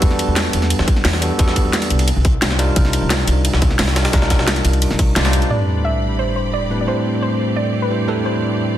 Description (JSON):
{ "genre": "liquid drum and bass", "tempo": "175 BPM", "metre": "4/4", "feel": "straight", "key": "A minor", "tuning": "A4 = 438 Hz", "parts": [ { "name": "bell-like tine electric piano", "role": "accompaniment", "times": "0.0-8.8 s", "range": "A2 to D5", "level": "-20 LUFS", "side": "equal", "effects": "vintage 12-bit sampler grit, ping-pong delay" }, { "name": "upright bass", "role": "bass", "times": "0.0-5.4 s", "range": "C2 to E2", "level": "-18 LUFS", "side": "equal", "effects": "tube saturation" }, { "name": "drum and bass drum kit", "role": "drums", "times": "0.0-5.5 s", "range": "hi-hat, snare drum", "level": "-21 LUFS", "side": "left 1 dB", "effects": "overdrive, low-pass filter on snare, low-pass filter on hats" }, { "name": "electronic kick drum", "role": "drums", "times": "0.0-5.1 s", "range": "none", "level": "-16 LUFS", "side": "equal", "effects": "overdrive" }, { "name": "jungle sampler-style drum kit", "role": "drums", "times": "0.0-5.4 s", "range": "hi-hat, ride cymbal, snare drum", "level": "-23 LUFS", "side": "right 1 dB", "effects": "high-pass filter on snare, high-pass filter on cymbals, high-pass filter on hats, high-pass filter on room" }, { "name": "soft round pluck", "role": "melody", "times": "5.5-8.7 s", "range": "A4 to E5", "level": "-24 LUFS", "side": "right 2 dB", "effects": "chorus, tape echo" }, { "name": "bright studio string section", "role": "sustained chords", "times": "5.5-8.8 s", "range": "A3 to B5", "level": "-27 LUFS", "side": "right 1 dB", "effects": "sidechain pumping" }, { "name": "sub drop", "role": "sound effects", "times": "5.5-6.9 s", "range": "none", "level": "-22 LUFS", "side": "equal", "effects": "none" } ], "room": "light reverb", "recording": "dense, heavily limited modern master", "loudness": "-14 LUFS", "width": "side -12 dB against mid", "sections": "0.0-5.5 A section; 5.5-8.8 B section", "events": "band accent 5.2; impact 5.5-6.9", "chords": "0.0 Em11; 2.1 Cm11; 5.5 Am11" }